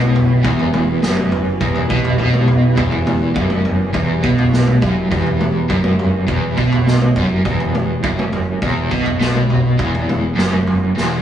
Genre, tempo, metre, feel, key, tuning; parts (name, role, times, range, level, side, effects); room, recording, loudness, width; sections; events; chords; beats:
psychedelic rock; 103 BPM; 4/4; straight; E minor; A4 = 439 Hz
string machine, cellos; sustained chords; 0.0-11.2 s; B3 to B4; -26 LUFS; right 1 dB; phaser, ensemble chorus
overdriven semi-hollow guitar; riff; 0.0-11.2 s; E2 to B2; -16 LUFS; equal; tremolo
growling picked electric bass; bass; 0.0-11.2 s; E1 to B1; -23 LUFS; equal; overdrive
vintage drum kit; drums; 0.0-11.1 s; kick drum, snare drum, toms; -20 LUFS; equal
moderate studio reverb, RT60 0.5 s; band playing live in one room; -14 LUFS; side -10 dB against mid
0.0-11.2 A section
drum fill 11.0
0.0 Em
| 0.44 1.02 1.61 2.19 | 2.77 3.36 3.94 4.53 | 5.11 5.69 6.28 6.86 | 7.45 8.03 8.62 9.20 | 9.79 10.37 10.96